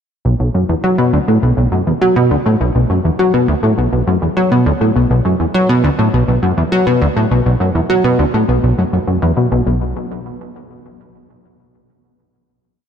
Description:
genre	ambient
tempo	102 BPM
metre	4/4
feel	straight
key	B minor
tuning	A4 = 443 Hz
part	plucky analog bass	solo	0.2-9.9 s	B1 to F#3	-12 LUFS	equal	wide subtle chorus, ping-pong delay
room	wet lush hall reverb, RT60 2.9 s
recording	none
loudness	-12 LUFS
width	side -8 dB against mid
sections	0.2-9.7 A section; 9.7-12.0 final note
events	none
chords	none

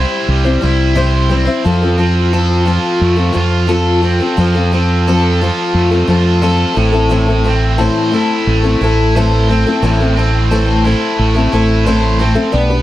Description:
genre	folk rock and heartland rock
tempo	88 BPM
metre	4/4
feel	straight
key	unclear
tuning	A4 = 442 Hz
part	picked twelve-string acoustic guitar	accompaniment	0.0-12.8 s	A2 to C5	-14 LUFS	left 2 dB	none
part	biting overdriven guitar	riff	0.0-12.8 s	A2 to C5	-18 LUFS	right 3 dB	none
part	fingered electric bass	bass	0.0-12.8 s	A1 to F2	-14 LUFS	right 1 dB	none
room	light reverb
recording	dark, warm production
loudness	-11 LUFS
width	side -14 dB against mid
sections	0.0-12.8 A section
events	none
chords	0.0 C; 1.7 F; 6.8 Am

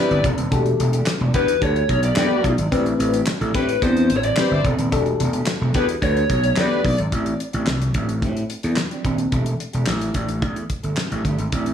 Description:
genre	early-eighties boogie funk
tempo	109 BPM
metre	4/4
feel	straight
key	A minor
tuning	A4 = 440 Hz
part	lead guitar through a small cranked amp	melody	0.0-7.0 s	B4 to D5	-23 LUFS	equal	overdrive, tape echo
part	analog synth brass	second line	0.0-6.8 s	B3 to C5	-27 LUFS	left 3 dB	chorus
part	FM electric piano with soft pad layer	accompaniment	0.0-6.9 s	C4 to C5	-24 LUFS	left 4 dB	chorus, phaser
part	mellow electric guitar	riff	0.1-11.7 s	A3 to A4	-29 LUFS	right 4 dB	analog chorus
part	gritty slap bass	bass	0.1-11.7 s	D#1 to A2	-21 LUFS	equal	overdrive
part	damped 70s drum kit	drums	0.1-11.7 s	handclaps, hi-hat, kick drum, snare drum	-24 LUFS	equal	gated reverb
room	little or no reverb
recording	studio reverb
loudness	-18 LUFS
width	side -8 dB against mid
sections	0.0-7.1 A section; 7.1-11.7 B section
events	none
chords	0.0 Am11; 0.5 Em11; 2.7 Am11; 4.9 Em11; 7.1 Am7; 9.3 Em7

